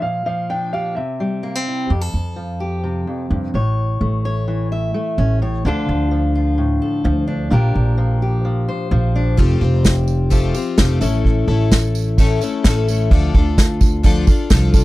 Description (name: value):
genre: indie folk with a building arrangement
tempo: 128 BPM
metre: 4/4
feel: straight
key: F major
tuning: A4 = 439 Hz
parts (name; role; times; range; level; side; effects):
- warm upright piano; melody; 0.0-1.6 s; E5 to G5; -23 LUFS; right 1 dB; none
- fingerpicked steel-string acoustic guitar; accompaniment; 0.0-11.2 s; F2 to E5; -22 LUFS; left 1 dB; none
- upright bass; bass; 1.9-14.8 s; F1 to F2; -18 LUFS; right 1 dB; none
- picked plugged-in twelve-string acoustic guitar; accompaniment; 9.4-14.8 s; A2 to A4; -21 LUFS; left 5 dB; none
- unplugged drum kit; drums; 9.4-14.8 s; kick drum, snare drum; -14 LUFS; equal; none
- tambourine; percussion; 9.8-14.8 s; none; -33 LUFS; right 13 dB; none
room: little or no reverb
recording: dry, close 1970s-style studio recording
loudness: -15 LUFS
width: side -18 dB against mid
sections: 0.0-1.9 A section; 1.9-14.8 B section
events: build-up 1.9-14.8; drum fill 9.4-14.8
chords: 0.0 Bb6; 1.0 C; 1.9 Fadd9; 3.5 A; 5.7 Dm; 7.5 Bb6; 9.4 Fadd9; 11.0 A; 13.1 Dm